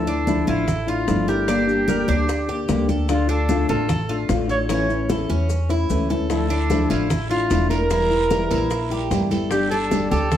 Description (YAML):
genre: latin, Cuban son and guajira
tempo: 149 BPM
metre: 4/4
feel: straight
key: D harmonic minor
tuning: A4 = 442 Hz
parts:
  - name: clear flugelhorn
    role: melody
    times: 0.0-10.4 s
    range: E4 to C#5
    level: -24 LUFS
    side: right 1 dB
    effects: none
  - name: nylon-string guitar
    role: accompaniment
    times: 0.0-10.4 s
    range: D3 to G4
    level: -23 LUFS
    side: left 3 dB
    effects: none
  - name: upright bass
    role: bass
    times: 0.0-10.4 s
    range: E1 to E2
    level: -24 LUFS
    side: equal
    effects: none
  - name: Cuban tres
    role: arpeggios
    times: 0.1-10.4 s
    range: C#4 to Bb4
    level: -29 LUFS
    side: right 2 dB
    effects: none
  - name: congas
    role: percussion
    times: 0.1-10.4 s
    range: none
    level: -27 LUFS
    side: equal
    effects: none
  - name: maracas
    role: percussion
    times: 0.1-10.4 s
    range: none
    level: -41 LUFS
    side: left 6 dB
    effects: none
  - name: bongos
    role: percussion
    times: 0.3-10.4 s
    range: none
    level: -31 LUFS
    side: left 3 dB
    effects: none
  - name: guiro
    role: percussion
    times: 6.3-10.4 s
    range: none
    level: -38 LUFS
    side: right 5 dB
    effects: none
room: wet studio reverb, RT60 0.7 s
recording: heard from further back in the room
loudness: -18 LUFS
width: side -10 dB against mid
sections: 0.0-10.4 A section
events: drum fill 5.5-6.3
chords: 0.0 Dmadd9; 1.5 Gm; 3.1 Dm; 4.7 A; 6.3 Dmadd9; 7.9 Edim; 9.5 Gsus2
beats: 0.28 0.68 1.08 | 1.48 1.88 2.28 2.69 | 3.09 3.49 3.89 4.29 | 4.69 5.09 5.50 5.90 | 6.30 6.70 7.10 7.50 | 7.91 8.31 8.71 9.11 | 9.52 9.92 10.32